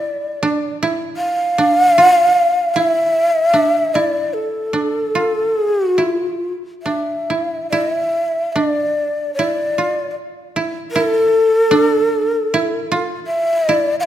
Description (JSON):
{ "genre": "japanese traditional, Japanese chamber music", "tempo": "66-80 BPM", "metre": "4/4", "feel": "rubato", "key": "unclear", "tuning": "A4 = 443 Hz", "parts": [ { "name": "breathy mellow shakuhachi", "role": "melody", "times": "0.0-14.1 s", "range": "A4 to F5", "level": "-15 LUFS", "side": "equal", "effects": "none" }, { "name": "koto", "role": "second line", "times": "0.0-14.1 s", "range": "D4 to F4", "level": "-21 LUFS", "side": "right 3 dB", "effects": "none" } ], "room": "moderate scoring stage reverb, RT60 1.9 s", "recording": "none", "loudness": "-14 LUFS", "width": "side -11 dB against mid", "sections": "0.0-7.7 A section; 7.7-14.1 B section", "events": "none", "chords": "none" }